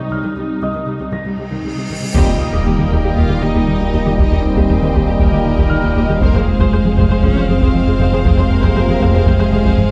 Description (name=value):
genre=cinematic, hybrid orchestral and electronic film score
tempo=118 BPM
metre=4/4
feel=straight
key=unclear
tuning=A4 = 441 Hz
part: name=warm symphonic viola section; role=accompaniment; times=0.0-9.7 s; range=C3 to C5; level=-28 LUFS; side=equal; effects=none
part: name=phased analog pad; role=sustained chords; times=0.0-9.9 s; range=C3 to Eb5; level=-25 LUFS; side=equal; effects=phaser, chorus
part: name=dark symphonic cello section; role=bass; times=0.0-9.7 s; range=C2 to F2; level=-25 LUFS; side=equal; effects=none
part: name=warm concert grand piano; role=texture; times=0.0-9.9 s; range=Db5 to Bb6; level=-31 LUFS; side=equal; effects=tape echo
part: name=cymbal swell and impact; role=sound effects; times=1.7-4.2 s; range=none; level=-26 LUFS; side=equal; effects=none
part: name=rich cello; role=melody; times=2.1-9.9 s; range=Ab3 to F4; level=-25 LUFS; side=equal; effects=none
part: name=warm symphonic violin section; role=melody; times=2.1-9.9 s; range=Ab4 to F5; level=-33 LUFS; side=equal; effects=none
part: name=rubbery square bass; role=riff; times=2.1-9.9 s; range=Eb2 to F3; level=-21 LUFS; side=equal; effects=none
part: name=sub bass with octave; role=bass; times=2.1-9.9 s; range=Eb1 to F1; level=-23 LUFS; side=equal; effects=none
part: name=solo taiko drums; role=drums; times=2.1-9.9 s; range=none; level=-21 LUFS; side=equal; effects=none
part: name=warm symphonic violin section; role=second line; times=2.2-9.9 s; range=C5 to G5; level=-27 LUFS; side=equal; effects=none
part: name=clear trombone section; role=sustained chords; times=2.2-9.9 s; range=Bb2 to Ab3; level=-26 LUFS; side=equal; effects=none
part: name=rich symphonic double bass section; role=bass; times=2.2-9.6 s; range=F1 to Eb2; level=-24 LUFS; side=equal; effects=none
room=moderate concert hall reverb, RT60 2.2 s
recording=dark, warm production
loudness=-15 LUFS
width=mono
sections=0.0-2.1 A section; 2.1-9.9 B section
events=build-up 0.0-2.1; cymbal swell 1.7-2.1; band accent 2.1-2.7; impact 2.1-4.2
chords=0.0 Cm; 2.1 Eb; 6.2 Fm